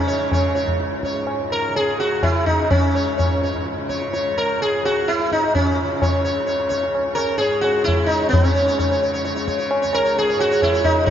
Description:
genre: indian classical, Hindustani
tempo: 128 BPM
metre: 3/4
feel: straight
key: C# raga bhimpalasi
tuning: A4 = 440 Hz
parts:
  - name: sitar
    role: melody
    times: 0.0-11.1 s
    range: C#4 to C#5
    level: -19 LUFS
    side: equal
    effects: none
  - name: tanpura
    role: drone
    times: 0.0-11.1 s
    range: C#2 to C#3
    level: -29 LUFS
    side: equal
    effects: none
  - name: tabla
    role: percussion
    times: 0.3-11.1 s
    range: none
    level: -22 LUFS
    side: left 1 dB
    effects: none
room: wet huge ambient reverb, RT60 8.1 s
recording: in a vast, echoing space, nothing above 7.5 kHz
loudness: -17 LUFS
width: side -9 dB against mid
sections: 0.0-8.3 A section; 8.3-11.1 B section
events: speeding up 0.0-11.1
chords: none

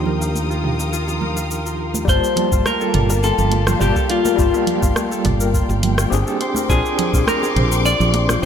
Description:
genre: sunset chillout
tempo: 104 BPM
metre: 4/4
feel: straight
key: G minor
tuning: A4 = 438 Hz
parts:
  - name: overdriven tine electric piano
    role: accompaniment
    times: 0.0-8.5 s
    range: F3 to A5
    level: -23 LUFS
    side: equal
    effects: medium tremolo, auto-pan, tape echo
  - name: warm symphonic string section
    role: sustained chords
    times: 0.0-8.5 s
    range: G4 to Eb6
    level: -27 LUFS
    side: left 2 dB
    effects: none
  - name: Celtic harp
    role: arpeggios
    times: 0.0-8.5 s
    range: F4 to F5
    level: -27 LUFS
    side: left 4 dB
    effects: tape echo
  - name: mellow fretless electric bass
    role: bass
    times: 0.0-8.5 s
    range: G1 to Eb2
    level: -20 LUFS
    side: right 1 dB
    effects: none
  - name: congas and bongos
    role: percussion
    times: 0.1-8.4 s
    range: none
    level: -27 LUFS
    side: right 6 dB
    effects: none
  - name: deep house drum kit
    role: drums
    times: 0.2-8.5 s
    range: hi-hat, rim click, shaker, toms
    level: -24 LUFS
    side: right 1 dB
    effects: studio reverb
  - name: clean electric guitar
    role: melody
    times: 2.1-8.4 s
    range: F4 to D5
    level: -20 LUFS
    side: left 4 dB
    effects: ping-pong delay
  - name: electronic kick drum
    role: drums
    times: 2.1-7.2 s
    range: none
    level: -21 LUFS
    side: right 1 dB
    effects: studio reverb
room: light reverb, digital ambience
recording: none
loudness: -15 LUFS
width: side -8 dB against mid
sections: 0.0-2.1 A section; 2.1-8.5 B section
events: filter sweep on tine electric piano 0.0-2.1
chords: 0.0 Ebmaj9; 2.1 Gm9; 6.4 Bb13

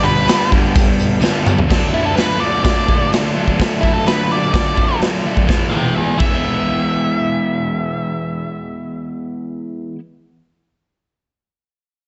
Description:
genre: garage rock duo or trio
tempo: 126 BPM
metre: 4/4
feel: straight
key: E mixolydian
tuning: A4 = 440 Hz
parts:
  - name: octave-fuzz lead guitar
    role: melody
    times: 0.0-9.9 s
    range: E4 to G5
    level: -22 LUFS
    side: equal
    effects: distortion, tape echo
  - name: crunchy overdriven guitar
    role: riff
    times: 0.0-10.0 s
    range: G2 to E4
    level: -21 LUFS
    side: equal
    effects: none
  - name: raw garage drum kit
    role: drums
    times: 0.3-6.3 s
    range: crash cymbal, hi-hat, kick drum, snare drum, toms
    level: -19 LUFS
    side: equal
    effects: none
  - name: tambourine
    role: percussion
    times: 0.3-1.6 s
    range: none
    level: -36 LUFS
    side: equal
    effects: none
room: moderate stone room reverb, RT60 1.2 s, studio reverb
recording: nothing above 8.0 kHz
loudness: -16 LUFS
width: mono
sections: 0.0-1.7 A section; 1.7-5.5 B section; 5.5-9.3 C section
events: drum fill 1.2-1.7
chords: 0.0 G; 1.7 D; 5.5 E

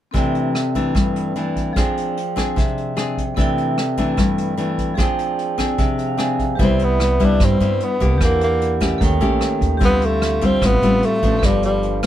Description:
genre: bossa nova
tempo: 149 BPM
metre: 4/4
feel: straight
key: C major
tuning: A4 = 441 Hz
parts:
  - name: nylon-string guitar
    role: accompaniment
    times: 0.1-12.1 s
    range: G2 to Ab4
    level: -20 LUFS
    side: left 3 dB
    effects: none
  - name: vibraphone with medium hard mallets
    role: accompaniment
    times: 0.1-12.1 s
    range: F3 to C6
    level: -24 LUFS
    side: right 4 dB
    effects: none
  - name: vintage brush drum kit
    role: drums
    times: 0.1-12.1 s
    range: hi-hat, kick drum, rim click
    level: -22 LUFS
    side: equal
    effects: none
  - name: breathy tenor saxophone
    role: melody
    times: 6.6-12.0 s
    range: G3 to D4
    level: -19 LUFS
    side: right 1 dB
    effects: none
  - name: upright bass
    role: bass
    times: 6.6-12.1 s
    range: G1 to G2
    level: -21 LUFS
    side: equal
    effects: none
room: moderate booth ambience, RT60 0.2 s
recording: none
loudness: -16 LUFS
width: side -12 dB against mid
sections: 0.1-6.6 A section; 6.6-12.1 B section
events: vibraphone fill 5.8-6.6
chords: 0.1 C69; 1.8 Fm6; 3.4 C69; 5.0 Fm6; 6.6 Cmaj7; 8.2 Em7b5; 9.0 Eb7#11; 9.8 Dm11; 11.4 G7

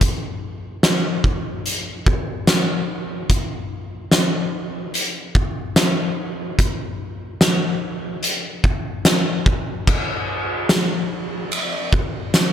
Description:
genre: dream pop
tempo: 73 BPM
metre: 4/4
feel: straight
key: none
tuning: none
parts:
  - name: oversized low-tuned drum kit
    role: drums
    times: 0.0-12.5 s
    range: crash cymbal, hi-hat, kick drum, ride cymbal, snare drum, tambourine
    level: -18 LUFS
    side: equal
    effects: gated reverb
room: light reverb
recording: bright 1980s-style digital production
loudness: -18 LUFS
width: side -10 dB against mid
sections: 0.0-9.9 A section; 9.9-12.5 B section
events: none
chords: none

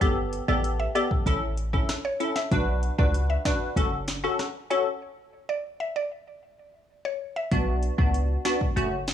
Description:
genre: dancehall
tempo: 96 BPM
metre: 4/4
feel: straight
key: B minor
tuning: A4 = 440 Hz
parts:
  - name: wavetable chord stab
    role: accompaniment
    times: 0.0-9.0 s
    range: A3 to B4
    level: -27 LUFS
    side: left 1 dB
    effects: none
  - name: warm 808-style bass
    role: bass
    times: 0.0-9.1 s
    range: F#1 to C#2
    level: -26 LUFS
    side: equal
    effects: none
  - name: afro-pop drum kit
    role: drums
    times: 0.0-9.1 s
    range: hi-hat, kick drum, rim click, snare drum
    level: -27 LUFS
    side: equal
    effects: none
  - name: mallet-like synth pluck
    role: melody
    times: 0.5-7.5 s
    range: C#5 to E5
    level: -31 LUFS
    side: left 1 dB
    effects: chorus, analog delay
room: little or no reverb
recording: dry, gritty hardware recording, small room ambience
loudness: -24 LUFS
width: side -10 dB against mid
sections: 0.0-7.5 A section; 7.5-9.1 B section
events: break 5.0-7.5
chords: 0.0 Gadd9; 1.3 A; 2.5 Bm; 3.8 F#m; 5.0 N.C.; 7.5 Bm

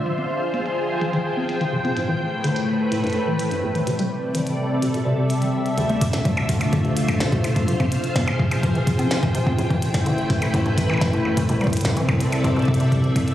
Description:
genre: IDM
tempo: 126 BPM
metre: 4/4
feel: straight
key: D dorian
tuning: A4 = 439 Hz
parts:
  - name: soft string machine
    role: sustained chords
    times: 0.0-13.3 s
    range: A2 to G5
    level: -22 LUFS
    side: equal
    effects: ensemble chorus, vintage 12-bit sampler grit
  - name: deep acid bass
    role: arpeggios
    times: 0.1-13.1 s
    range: E2 to C4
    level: -26 LUFS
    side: left 1 dB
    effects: dub echo
  - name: glitchy drum kit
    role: drums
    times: 0.1-13.3 s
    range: hi-hat, percussion blips, snare drum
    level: -30 LUFS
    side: equal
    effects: overdrive, low-pass filter on hats, low-pass filter on perc, low-pass filter on snare, dub echo
  - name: round analog bass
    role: bass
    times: 5.8-13.3 s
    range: F1 to D2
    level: -25 LUFS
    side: equal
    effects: tube saturation
  - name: electronic kick drum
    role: drums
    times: 6.0-13.3 s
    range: none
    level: -22 LUFS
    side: equal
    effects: overdrive
room: light reverb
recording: recorded on a phone in the room, studio reverb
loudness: -19 LUFS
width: side -12 dB against mid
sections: 0.0-5.8 A section; 5.8-13.3 B section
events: filter sweep on acid bass 0.0-5.8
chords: 0.1 Fmadd9; 2.0 Am7; 3.9 C69; 5.8 Dm7; 7.7 Fmadd9; 9.6 Am7; 11.5 C69

